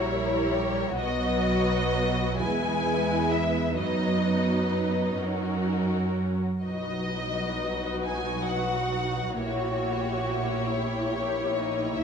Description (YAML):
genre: classical, slow romantic movement for string orchestra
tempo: 41-46 BPM (dotted quarters)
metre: 6/8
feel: rubato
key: B major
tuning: A4 = 440 Hz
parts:
  - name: rich chamber violin section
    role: melody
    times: 0.0-12.0 s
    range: C#5 to G#5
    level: -31 LUFS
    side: left 4 dB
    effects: none
  - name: warm symphonic violin section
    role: second line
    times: 0.0-12.0 s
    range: D#4 to C#5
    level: -32 LUFS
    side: left 4 dB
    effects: none
  - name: rich symphonic viola section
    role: accompaniment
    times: 0.0-12.0 s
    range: F#3 to E4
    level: -30 LUFS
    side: right 2 dB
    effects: none
  - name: rich symphonic cello section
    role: bass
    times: 0.0-12.0 s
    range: D#4 to G4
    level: -34 LUFS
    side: right 2 dB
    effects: none
  - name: warm symphonic double bass section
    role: bass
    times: 0.0-12.0 s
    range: A#1 to F#2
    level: -31 LUFS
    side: right 3 dB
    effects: none
room: wet recital hall reverb, RT60 1.4 s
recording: none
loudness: -24 LUFS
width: side -6 dB against mid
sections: 0.0-12.0 A section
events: none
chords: 0.0 A#dim7; 1.0 B; 2.4 E; 3.8 B/F#; 5.2 F#; 6.6 B; 9.4 A#dim7